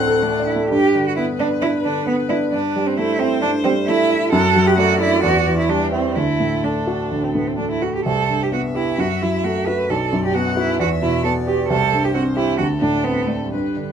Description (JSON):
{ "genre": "quick classical-period movement for piano trio", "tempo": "131 BPM", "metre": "4/4", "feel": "rubato", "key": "G major", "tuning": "A4 = 441 Hz", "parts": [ { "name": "warm violin", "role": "melody", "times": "0.0-13.9 s", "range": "G4 to F#5", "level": "-29 LUFS", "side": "left 8 dB", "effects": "none" }, { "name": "clear cello", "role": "second line", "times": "0.0-13.9 s", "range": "G3 to B4", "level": "-20 LUFS", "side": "right 5 dB", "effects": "none" }, { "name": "warm grand piano", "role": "accompaniment", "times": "0.0-13.9 s", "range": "B1 to A4", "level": "-19 LUFS", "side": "equal", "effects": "none" } ], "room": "light reverb", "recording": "none", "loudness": "-16 LUFS", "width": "side -8 dB against mid", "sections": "0.7-13.9 A section", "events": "none", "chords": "0.0 D; 0.7 G; 2.5 Am7/G; 4.3 D/F#; 5.2 Em9; 6.2 D; 8.0 Cmaj7; 9.0 F#m7; 9.9 Bm; 10.8 Em; 11.7 C5; 12.6 D5", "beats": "0.23 | 0.71 1.16 1.62 2.08 | 2.53 2.98 3.43 3.88 | 4.33 4.78 5.24 5.70 | 6.16 6.64 7.11 7.58 | 8.05 8.52 8.98 9.43 | 9.89 10.35 10.80 11.25 | 11.71 12.15 12.60 13.05 | 13.52" }